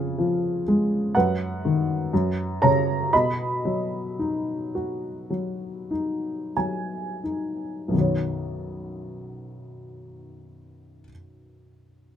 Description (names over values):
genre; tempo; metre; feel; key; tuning
classical, lyrical solo piano; 42-62 BPM; 4/4; rubato; B major; A4 = 440 Hz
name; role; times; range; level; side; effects
warm upright piano; solo; 0.0-12.2 s; B1 to B5; -23 LUFS; equal; none
room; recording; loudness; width
light reverb; close, detailed microphones; -23 LUFS; side -9 dB against mid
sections
0.0-7.9 A section; 7.9-12.2 B section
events
slowing down 0.0-7.9; upright piano fill 5.9-7.9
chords
0.0 C#/E#; 1.1 B/F#; 2.1 F#; 3.1 B; 7.9 Badd9